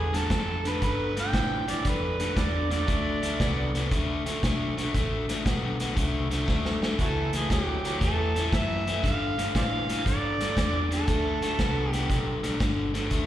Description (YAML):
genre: electric blues shuffle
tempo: 117 BPM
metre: 4/4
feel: swing 67% on 8ths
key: unclear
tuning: A4 = 440 Hz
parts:
  - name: overdriven harmonica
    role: melody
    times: 0.0-3.7, 7.0-12.4 s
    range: E4 to G5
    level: -30 LUFS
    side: right 4 dB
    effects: slapback echo
  - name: biting overdriven guitar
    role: riff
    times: 0.0-13.3 s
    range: G2 to B3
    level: -29 LUFS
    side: left 3 dB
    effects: slapback echo
  - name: vintage muted fingered electric bass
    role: bass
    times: 0.0-13.3 s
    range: G1 to A2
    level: -30 LUFS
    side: equal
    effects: none
  - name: vintage drum kit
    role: drums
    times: 0.1-13.3 s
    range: hi-hat, kick drum, snare drum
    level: -29 LUFS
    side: equal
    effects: none
room: light reverb, studio ambience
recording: live gig heard through the venue's PA, recital hall reverb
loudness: -24 LUFS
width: side -12 dB against mid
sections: 0.0-13.3 A section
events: drum fill 6.5-7.0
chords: 0.0 G7; 2.9 D5; 7.0 A7; 9.0 G5; 11.1 D5; 12.1 G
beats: 0.30 | 0.82 1.33 1.85 2.37 | 2.88 3.40 3.91 4.42 | 4.94 5.45 5.96 6.48 | 6.99 7.50 8.01 8.52 | 9.03 9.54 10.05 10.56 | 11.07 11.58 12.09 12.60 | 13.11